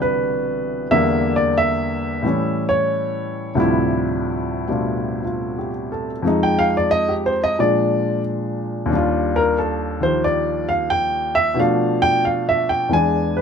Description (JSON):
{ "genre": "solo jazz", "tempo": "90 BPM", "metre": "4/4", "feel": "swing 67% on 8ths", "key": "unclear", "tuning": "A4 = 441 Hz", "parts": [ { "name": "warm upright piano", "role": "solo", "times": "0.0-13.4 s", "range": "C2 to G#5", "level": "-17 LUFS", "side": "equal", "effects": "none" } ], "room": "moderate studio reverb, RT60 0.5 s", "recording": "none", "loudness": "-17 LUFS", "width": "side -6 dB against mid", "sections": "0.0-13.4 A section", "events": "upright piano solo 0.0-13.4", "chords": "0.0 Cmaj7; 0.9 Em7b5; 2.2 A7; 3.6 Dm11; 6.2 Fm7; 7.6 Bb7; 8.9 Ebmaj9; 11.6 Bm7b5; 12.9 E7" }